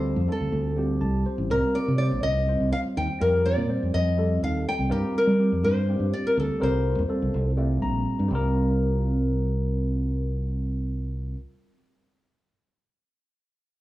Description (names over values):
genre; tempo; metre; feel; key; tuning
electric jazz fusion; 247 BPM (eighths); 7/8; straight; C dorian; A4 = 441 Hz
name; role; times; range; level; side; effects
nylon-string guitar; melody; 0.0-7.8 s; G4 to G5; -27 LUFS; left 1 dB; slapback echo
barky tine electric piano; accompaniment; 0.0-11.4 s; G3 to Bb5; -29 LUFS; left 1 dB; phaser
fingered electric bass; bass; 0.0-11.3 s; A1 to G3; -24 LUFS; right 1 dB; none
room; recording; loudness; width
light reverb, small room reverb; small room ambience; -22 LUFS; side -16 dB against mid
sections
0.0-8.3 A section; 8.3-11.7 B section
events
tine electric piano fill 0.8-1.5, 7.6-8.3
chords
0.0 Dm7; 1.5 Cm7; 3.2 F9sus4; 4.9 Gm7; 6.6 C7(no3); 8.3 C5